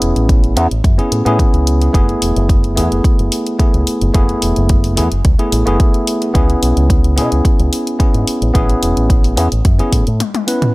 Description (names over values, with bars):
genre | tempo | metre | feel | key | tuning
nu-disco, nu disco | 109 BPM | 4/4 | straight | F# minor | A4 = 440 Hz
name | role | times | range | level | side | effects
bright tine electric piano | accompaniment | 0.0-10.7 s | A3 to B4 | -17 LUFS | equal | sidechain pumping, tape echo
fingered electric bass with an envelope filter | bass | 0.0-10.2 s | E1 to B2 | -15 LUFS | equal | tube saturation
pop drum kit | drums | 0.0-10.7 s | hi-hat, toms | -21 LUFS | left 1 dB | studio reverb
electronic kick drum | drums | 0.3-10.0 s | none | -12 LUFS | equal | studio reverb
room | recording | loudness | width
little or no reverb | none | -11 LUFS | side -21 dB against mid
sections
0.0-10.7 A section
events
break 10.2-10.7; drum fill 10.2-10.7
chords
0.0 F#m11; 6.3 C#m7; 8.3 F#m11 (rootless)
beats
0.29 0.84 1.40 | 1.95 2.50 3.05 3.60 | 4.15 4.70 5.25 5.80 | 6.35 6.90 7.45 8.00 | 8.55 9.10 9.65 10.20